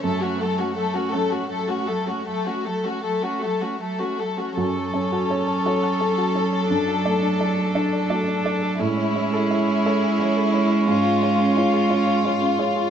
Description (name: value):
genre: neoclassical piano and strings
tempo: 51-59 BPM (dotted quarters)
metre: 6/8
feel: rubato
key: F# minor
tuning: A4 = 440 Hz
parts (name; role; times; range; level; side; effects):
- warm chamber violin section; melody; 0.0-12.9 s; E4 to A4; -24 LUFS; left 6 dB; none
- warm cello; second line; 0.0-12.9 s; F#3 to A3; -25 LUFS; right 3 dB; none
- felt-muted upright piano; accompaniment; 0.0-12.9 s; F#2 to D5; -28 LUFS; right 5 dB; none
- warm viola; accompaniment; 0.0-12.9 s; A3 to D4; -28 LUFS; right 3 dB; none
- soft round pluck; arpeggios; 4.6-12.9 s; C#4 to G#5; -30 LUFS; left 1 dB; chorus
room: moderate large studio reverb, RT60 1.1 s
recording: band playing live in one room, nothing above 8.0 kHz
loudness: -20 LUFS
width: side -8 dB against mid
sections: 0.0-4.6 A section; 4.6-12.9 B section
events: none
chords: 0.0 F#m; 6.7 D/F#; 8.8 Amaj7; 10.9 C#/G#